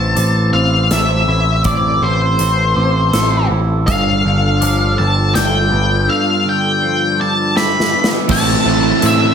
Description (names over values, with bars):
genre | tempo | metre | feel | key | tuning
post-rock | 81 BPM | 3/4 | straight | A minor | A4 = 440 Hz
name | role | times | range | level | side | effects
octave-fuzz lead guitar | melody | 0.0-9.3 s | C5 to B5 | -16 LUFS | left 2 dB | distortion, slapback echo, plate reverb
warm analog pad | sustained chords | 0.0-9.3 s | E3 to A5 | -23 LUFS | right 2 dB | chorus, plate reverb
clean electric guitar | arpeggios | 0.0-9.3 s | G2 to A4 | -22 LUFS | left 2 dB | spring reverb, slapback echo, plate reverb
glockenspiel with rubber mallets | arpeggios | 0.0-9.3 s | D6 to E6 | -25 LUFS | right 6 dB | slapback echo, plate reverb
growling picked electric bass | bass | 0.0-9.3 s | G1 to A2 | -16 LUFS | right 1 dB | overdrive
big rock drum kit | drums | 0.2-9.2 s | crash cymbal, hi-hat, kick drum, snare drum | -20 LUFS | left 1 dB | none
crunchy overdriven guitar | riff | 8.3-9.3 s | A2 to E4 | -18 LUFS | left 8 dB | none
sludgy distorted guitar | riff | 8.3-9.3 s | A2 to E4 | -17 LUFS | right 12 dB | overdrive
room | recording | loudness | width
moderate large studio reverb, RT60 0.8 s, small room ambience | none | -12 LUFS | side -7 dB against mid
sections
0.0-8.3 A section; 8.3-9.3 B section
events
drum fill 7.6-8.3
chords
0.0 Am; 3.9 G7; 8.3 Am